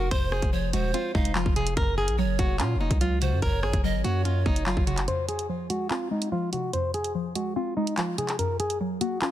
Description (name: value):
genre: hip hop, drill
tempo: 145 BPM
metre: 4/4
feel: half-time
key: F phrygian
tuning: A4 = 440 Hz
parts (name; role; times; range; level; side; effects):
- flamenco guitar; melody; 0.0-9.3 s; Eb4 to C5; -30 LUFS; equal; low-pass filter, ping-pong delay
- breathy hollow pan flute; second line; 0.0-5.0 s; Bb4 to F5; -35 LUFS; right 5 dB; ping-pong delay
- mallet-like synth pluck; accompaniment; 0.0-9.3 s; F2 to Db4; -31 LUFS; equal; chorus, phaser, low-pass filter
- long sustained 808-style bass; bass; 0.0-5.1 s; Eb1 to Bb2; -27 LUFS; equal; none
- drill drum kit; drums; 0.1-9.3 s; handclaps, hi-hat, kick drum, rim click; -28 LUFS; equal; vintage 12-bit sampler grit
room: little or no reverb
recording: dense, heavily limited modern master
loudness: -24 LUFS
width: side -12 dB against mid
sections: 0.0-5.1 A section; 5.1-9.3 B section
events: break 5.1-9.3; filter sweep 5.1-9.3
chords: 0.0 Fm; 1.8 Gb; 5.1 Fm; 8.4 Gb